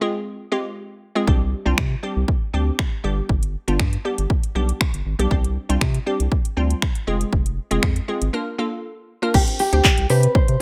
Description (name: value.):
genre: dance-pop.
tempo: 119 BPM.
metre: 4/4.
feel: straight.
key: unclear.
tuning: A4 = 439 Hz.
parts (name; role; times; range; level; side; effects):
glassy wavetable pluck; accompaniment; 0.0-10.6 s; G3 to C5; -27 LUFS; equal; chorus, sidechain pumping.
round analog bass; bass; 1.3-10.6 s; F1 to C3; -24 LUFS; equal; sidechain pumping.
house drum kit; drums; 1.3-10.6 s; crash cymbal, finger snaps, handclaps, hi-hat, kick drum; -22 LUFS; equal; none.
mellow electric guitar; melody; 9.3-10.6 s; G4 to C5; -24 LUFS; equal; spring reverb.
room: little or no reverb.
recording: none.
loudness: -21 LUFS.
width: mono.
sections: 0.0-9.3 A section; 9.3-10.6 B section.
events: break 8.3-9.3.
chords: 0.0 Fm; 1.3 Csus2; 3.0 G; 5.3 Csus2; 7.1 Fm; 8.3 Bb; 9.3 Csus2.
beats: 0.27 0.77 | 1.27 1.78 2.28 2.79 | 3.29 3.80 4.30 4.80 | 5.31 5.81 6.32 6.82 | 7.33 7.83 8.33 8.84 | 9.34 9.85 10.35.